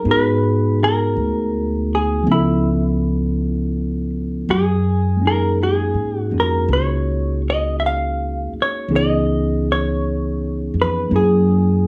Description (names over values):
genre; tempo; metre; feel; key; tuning
jazz ballad; 54 BPM; 4/4; swing 67% on 8ths; unclear; A4 = 441 Hz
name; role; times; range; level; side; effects
hollow-body jazz guitar; melody; 0.0-11.9 s; E4 to F5; -24 LUFS; equal; plate reverb
mellow tine electric piano; accompaniment; 0.0-11.9 s; Fb3 to A4; -23 LUFS; equal; plate reverb
upright bass; bass; 0.1-11.9 s; Db2 to Ab2; -22 LUFS; equal; none
room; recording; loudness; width
moderate small room reverb, RT60 0.5 s; studio reverb; -19 LUFS; mono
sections
0.0-11.9 A section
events
none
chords
0.1 Abm7; 2.3 Db7alt; 4.5 Gb69; 8.9 Dbm7; 11.1 Gb9